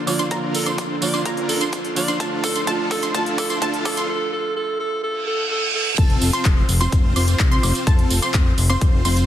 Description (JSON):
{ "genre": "EDM, festival progressive house", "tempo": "127 BPM", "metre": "4/4", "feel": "straight", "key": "F major", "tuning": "A4 = 440 Hz", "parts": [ { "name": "warm baby grand piano", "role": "accompaniment", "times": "0.0-6.0 s", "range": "D3 to F4", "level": "-26 LUFS", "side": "right 4 dB", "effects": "sidechain pumping" }, { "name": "riser and reverse cymbal", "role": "sound effects", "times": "0.9-6.0 s", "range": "none", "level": "-29 LUFS", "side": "right 3 dB", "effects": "none" }, { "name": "warm alto saxophone", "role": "melody", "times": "0.1-5.9 s", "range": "A4 to D5", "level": "-26 LUFS", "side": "right 1 dB", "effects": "dub echo" }, { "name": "big-room dance drum kit", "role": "drums", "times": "0.1-9.3 s", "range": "crash cymbal, handclaps, hi-hat, tambourine, woodblock", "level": "-26 LUFS", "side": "right 1 dB", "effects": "high-pass filter on hats, high-pass filter on perc, high-pass filter on cymbals, high-pass filter on snare, high-pass filter on room" }, { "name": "wide unison pluck", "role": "arpeggios", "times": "0.2-9.3 s", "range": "A5 to C6", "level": "-27 LUFS", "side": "equal", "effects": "sidechain pumping, dub echo" }, { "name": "dense compressed supersaw", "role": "riff", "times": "0.2-9.3 s", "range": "C4 to C5", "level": "-26 LUFS", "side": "equal", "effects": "sidechain pumping, dub echo" }, { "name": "electronic kick drum", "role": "drums", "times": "0.3-8.9 s", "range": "none", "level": "-19 LUFS", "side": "left 1 dB", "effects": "high-pass filter on kick, high-pass filter on room" }, { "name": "fat analog bass", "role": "bass", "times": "6.0-9.2 s", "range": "F1 to C2", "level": "-20 LUFS", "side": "left 1 dB", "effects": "sidechain pumping" } ], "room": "light reverb, digital ambience", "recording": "dense, heavily limited modern master, high-pass filter", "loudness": "-17 LUFS", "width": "side -11 dB against mid", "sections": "0.0-6.0 A section; 6.0-9.3 B section", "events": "build-up 0.0-6.0; drum fill 0.0-4.1; reverse cymbal 5.2-6.0; drop 6.0-9.3", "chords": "0.0 Bb; 2.2 Dm; 6.0 F" }